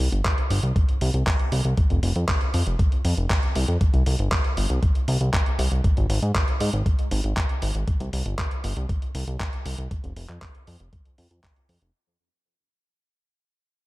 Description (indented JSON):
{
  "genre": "italo disco",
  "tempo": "118 BPM",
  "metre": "4/4",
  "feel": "straight",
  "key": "unclear",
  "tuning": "A4 = 439 Hz",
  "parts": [
    { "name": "fat analog bass", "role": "bass", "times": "0.0-11.9 s", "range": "F1 to Ab2", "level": "-24 LUFS", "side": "equal", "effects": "analog delay" },
    { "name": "dusty soul sampler-style drum kit", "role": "drums", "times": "0.0-11.9 s", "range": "handclaps, hi-hat", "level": "-30 LUFS", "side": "equal", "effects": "none" },
    { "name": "electronic kick drum", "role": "drums", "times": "0.2-11.5 s", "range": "none", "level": "-22 LUFS", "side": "equal", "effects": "none" }
  ],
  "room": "little or no reverb",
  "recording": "none",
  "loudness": "-21 LUFS",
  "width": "side -19 dB against mid",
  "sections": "0.0-11.9 A section",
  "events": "fade-out 6.5-11.9",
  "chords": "none"
}